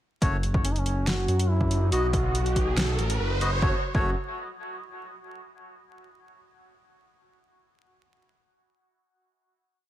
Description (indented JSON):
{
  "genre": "deep dubstep",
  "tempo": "141 BPM",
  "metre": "4/4",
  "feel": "half-time",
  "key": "F# dorian",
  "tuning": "A4 = 440 Hz",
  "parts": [
    { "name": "granular cloud pad", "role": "sustained chords", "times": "1.3-3.7 s", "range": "F#4", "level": "-36 LUFS", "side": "right 1 dB", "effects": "built-in reverb" },
    { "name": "melodica", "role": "stabs", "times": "0.2-4.1 s", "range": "A3 to D#5", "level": "-34 LUFS", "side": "left 1 dB", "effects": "dub echo" },
    { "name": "dark detuned saw bass", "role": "bass", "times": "0.2-4.1 s", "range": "F#1 to F#2", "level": "-26 LUFS", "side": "equal", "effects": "tube saturation" },
    { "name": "deep house drum kit", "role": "drums", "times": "0.2-3.5 s", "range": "hi-hat, snare drum", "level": "-30 LUFS", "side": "equal", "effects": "overdrive" },
    { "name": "electronic kick drum", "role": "drums", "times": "0.2-4.0 s", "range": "none", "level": "-27 LUFS", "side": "equal", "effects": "overdrive" },
    { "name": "riser", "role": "sound effects", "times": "1.0-3.6 s", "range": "none", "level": "-34 LUFS", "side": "right 2 dB", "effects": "none" },
    { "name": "mellow duduk", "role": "melody", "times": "0.6-4.1 s", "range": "C#4 to F#4", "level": "-34 LUFS", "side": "equal", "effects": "dub echo" }
  ],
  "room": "light reverb, digital ambience",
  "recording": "vinyl crackle",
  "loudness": "-23 LUFS",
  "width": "side -13 dB against mid",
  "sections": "0.2-3.6 build; 3.6-5.3 final chord",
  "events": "build-up 0.2-3.6; riser 1.0-3.6",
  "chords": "0.2 F#5; 1.9 B; 3.6 F#m",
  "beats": "| 0.22 0.65 1.07 1.50 | 1.92 2.35 2.77 3.20 | 3.62 4.05"
}